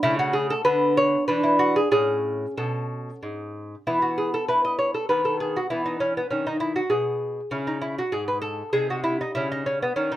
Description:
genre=classical, baroque-style dance for lute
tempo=98 BPM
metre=3/4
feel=rubato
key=A major, E major from 3.9 s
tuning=A4 = 440 Hz
part: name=lute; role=solo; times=0.0-10.2 s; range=G#2 to D#5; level=-22 LUFS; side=equal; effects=none
room=little or no reverb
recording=none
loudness=-22 LUFS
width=side -13 dB against mid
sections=0.0-3.9 A section; 3.9-10.2 A section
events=none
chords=0.0 A/C#; 0.7 Bm/D; 1.3 E9; 1.9 A; 3.9 E5; 5.1 B/D#; 5.7 E; 7.5 C#m; 8.7 Cdim; 9.4 C#m9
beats=| 0.03 0.65 1.28 | 1.92 2.58 3.23 | 3.87 4.49 5.09 | 5.71 6.31 6.92 | 7.53 8.13 8.74 | 9.35 9.96

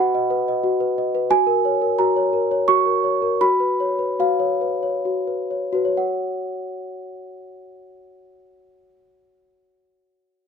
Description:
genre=classical, lullaby for celesta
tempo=63-91 BPM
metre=3/4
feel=rubato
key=F# major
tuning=A4 = 441 Hz
part: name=celesta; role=solo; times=0.0-10.5 s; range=F#4 to C#6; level=-18 LUFS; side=equal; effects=none
room=light reverb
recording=close, detailed microphones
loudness=-18 LUFS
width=side -6 dB against mid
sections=0.0-6.0 A section; 6.0-10.5 B section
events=slowing down 0.3-6.0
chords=0.0 B/F#; 1.3 F#; 3.4 C#7/F#; 6.0 F#5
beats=0.65 | 1.31 1.99 2.69 | 3.42 4.21 5.06 | 5.99 6.93 7.86 | 8.78 9.70

